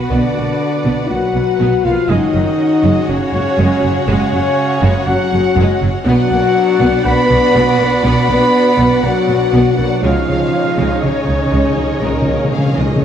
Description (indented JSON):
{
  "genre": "cinematic, epic orchestral film score",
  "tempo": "121 BPM",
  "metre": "4/4",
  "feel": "straight",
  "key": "unclear",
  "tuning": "A4 = 440 Hz",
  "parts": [
    { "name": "rich symphonic violin section", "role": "melody", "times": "0.0-13.0 s", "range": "G#4 to B5", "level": "-26 LUFS", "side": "left 3 dB", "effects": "none" },
    { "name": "rich symphonic violin section", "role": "second line", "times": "0.0-13.0 s", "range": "B4 to F#5", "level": "-24 LUFS", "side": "left 1 dB", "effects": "none" },
    { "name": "rich symphonic viola section", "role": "accompaniment", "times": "0.0-13.0 s", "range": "F#3 to F#4", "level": "-22 LUFS", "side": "right 1 dB", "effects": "none" },
    { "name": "dark symphonic string section", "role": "sustained chords", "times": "0.0-13.0 s", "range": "B3 to F#5", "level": "-24 LUFS", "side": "equal", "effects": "none" },
    { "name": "mellow French horn section", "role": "sustained chords", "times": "0.0-13.0 s", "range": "G#3 to B4", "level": "-17 LUFS", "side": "left 4 dB", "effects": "none" },
    { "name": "warm trombone section", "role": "sustained chords", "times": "0.0-13.0 s", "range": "G#2 to B3", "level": "-21 LUFS", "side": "right 3 dB", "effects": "none" },
    { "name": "dark trumpet section", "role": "stabs", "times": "0.0-13.0 s", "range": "G#4 to B5", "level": "-22 LUFS", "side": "right 2 dB", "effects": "none" },
    { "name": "warm symphonic cello section", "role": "bass", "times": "0.1-13.0 s", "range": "F#2 to C#3", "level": "-20 LUFS", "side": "right 2 dB", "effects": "none" },
    { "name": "warm symphonic double bass section", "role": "bass", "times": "0.1-13.0 s", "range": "F#1 to C#2", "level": "-20 LUFS", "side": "right 2 dB", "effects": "none" },
    { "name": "timpani", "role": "percussion", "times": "10.0-13.0 s", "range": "C#3", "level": "-20 LUFS", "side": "left 1 dB", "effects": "none" }
  ],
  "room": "moderate scoring stage reverb, RT60 1.7 s",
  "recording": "dark, warm production",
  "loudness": "-11 LUFS",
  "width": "side -9 dB against mid",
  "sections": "0.0-13.0 A section",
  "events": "timpani fill 10.0-13.0",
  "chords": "0.0 Bm; 2.1 F#sus2; 6.1 Bm; 10.0 C#add9"
}